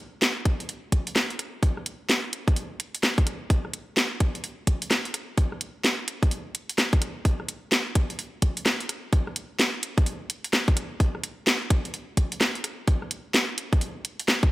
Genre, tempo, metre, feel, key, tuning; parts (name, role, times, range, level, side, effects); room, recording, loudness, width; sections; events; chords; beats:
UK garage; 128 BPM; 4/4; swing 63% on 16ths
house drum kit; drums; 0.2-14.5 s; hi-hat, rim click, snare drum; -24 LUFS; equal; studio reverb
electronic kick drum; drums; 0.5-14.5 s; -23 LUFS; equal; studio reverb
light reverb; dry, gritty hardware recording; -24 LUFS; side -18 dB against mid
0.0-14.5 A section
0.22 0.69 1.16 | 1.63 2.10 2.56 3.03 | 3.50 3.97 4.44 4.91 | 5.38 5.84 6.31 6.78 | 7.25 7.72 8.19 8.66 | 9.13 9.60 10.06 10.53 | 11.00 11.47 11.94 12.41 | 12.88 13.35 13.81 14.28